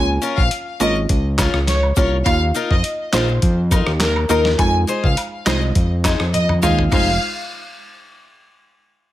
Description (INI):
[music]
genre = dancehall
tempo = 103 BPM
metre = 4/4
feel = straight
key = F minor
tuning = A4 = 440 Hz
[part]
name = warm symphonic violin section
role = melody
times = 0.0-7.2 s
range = Bb4 to Ab5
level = -22 LUFS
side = left 1 dB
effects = digital delay
[part]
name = mallet-like synth pluck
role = accompaniment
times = 0.0-7.1 s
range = Ab3 to F4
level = -25 LUFS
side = right 4 dB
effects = chorus
[part]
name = fat analog bass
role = bass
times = 0.0-7.2 s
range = F1 to F2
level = -19 LUFS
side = equal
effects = none
[part]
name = picked steel-string acoustic guitar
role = arpeggios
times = 0.2-7.1 s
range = Db4 to C5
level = -24 LUFS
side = left 5 dB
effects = none
[part]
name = cabasa and woodblock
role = percussion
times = 0.2-7.2 s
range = none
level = -30 LUFS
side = right 4 dB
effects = none
[part]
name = boom bap sampler-style drum kit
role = drums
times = 0.4-7.1 s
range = crash cymbal, handclaps, hi-hat, kick drum, rim click, snare drum, toms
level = -20 LUFS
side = equal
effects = none
[sound]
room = little or no reverb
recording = none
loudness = -15 LUFS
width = side -14 dB against mid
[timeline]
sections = 0.0-6.9 A section; 6.9-9.1 B section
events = drum fill 6.3-6.9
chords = 0.0 Db6; 2.3 Ebsus2; 4.6 Fm7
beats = 0.51 1.09 1.68 | 2.26 2.84 3.42 4.01 | 4.59 5.17 5.75 6.34 | 6.92